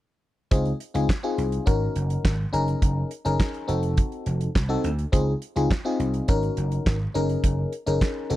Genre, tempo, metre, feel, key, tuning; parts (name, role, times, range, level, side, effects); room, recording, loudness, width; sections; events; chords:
early-eighties boogie funk; 104 BPM; 4/4; straight; A4 = 441 Hz
FM electric piano; accompaniment; 0.5-8.4 s; C4 to Bb4; -27 LUFS; left 3 dB; chorus, phaser
vintage slap bass; bass; 0.5-8.4 s; F1 to D2; -25 LUFS; right 1 dB
damped 70s drum kit; drums; 0.5-8.4 s; handclaps, hi-hat, kick drum, snare drum; -23 LUFS; right 1 dB
studio ambience; dry, close 1970s-style studio recording; -22 LUFS; side -15 dB against mid
0.5-8.4 A section
0.5 Dbmaj9; 1.7 Gb69; 3.7 F7b9; 5.1 Dbmaj9; 6.3 Gb69